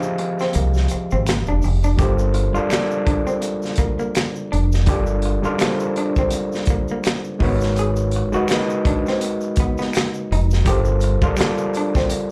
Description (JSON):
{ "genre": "R&B, neo-soul", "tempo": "83 BPM", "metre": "4/4", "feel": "swing 56% on 16ths", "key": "unclear", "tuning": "A4 = 440 Hz", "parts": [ { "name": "overdriven reed electric piano", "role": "accompaniment", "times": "0.0-12.3 s", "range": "F3 to F5", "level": "-25 LUFS", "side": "equal", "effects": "slapback echo" }, { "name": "tube shaker and finger snaps", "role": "percussion", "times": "0.0-12.3 s", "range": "none", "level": "-38 LUFS", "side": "equal", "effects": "none" }, { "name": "electric guitar through a small old amp", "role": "second line", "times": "0.2-12.2 s", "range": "Bb3 to Ab4", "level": "-28 LUFS", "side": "equal", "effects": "slapback echo" }, { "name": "crunchy breakbeat drum kit", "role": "drums", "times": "0.2-12.3 s", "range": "finger snaps, hi-hat, kick drum, snare drum", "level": "-24 LUFS", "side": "equal", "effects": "none" }, { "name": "deep dub fingered electric bass", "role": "bass", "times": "0.6-11.3 s", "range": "F1 to C2", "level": "-21 LUFS", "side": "equal", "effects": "none" } ], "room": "light reverb", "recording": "live gig heard through the venue's PA, club reverb", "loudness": "-20 LUFS", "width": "mono", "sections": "0.0-2.0 A section; 2.0-12.3 B section", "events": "break 0.0-2.0", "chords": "0.0 Fm9; 2.0 Gm11; 7.4 Abm11; 10.7 Gm11" }